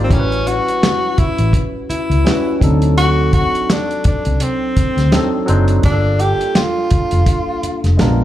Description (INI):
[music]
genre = lush 1970s-style soul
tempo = 84 BPM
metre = 4/4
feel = swing 58% on 16ths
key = unclear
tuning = A4 = 440 Hz
[part]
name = breathy tenor saxophone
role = melody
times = 0.0-8.0 s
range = C4 to G4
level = -19 LUFS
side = equal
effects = slapback echo
[part]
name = barky tine electric piano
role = accompaniment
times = 0.0-8.2 s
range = F#3 to D5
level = -20 LUFS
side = equal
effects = phaser, slapback echo
[part]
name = vintage muted fingered electric bass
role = bass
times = 0.0-8.2 s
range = F1 to D2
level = -15 LUFS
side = equal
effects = none
[part]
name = warm soul drum kit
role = drums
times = 0.1-8.2 s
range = hi-hat, kick drum, snare drum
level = -17 LUFS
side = equal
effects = none
[sound]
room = studio reverb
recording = live gig heard through the venue's PA, club reverb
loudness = -13 LUFS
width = side -13 dB against mid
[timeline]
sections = 0.0-8.2 A section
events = none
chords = 0.1 A13; 2.6 D7b9; 5.8 Gm9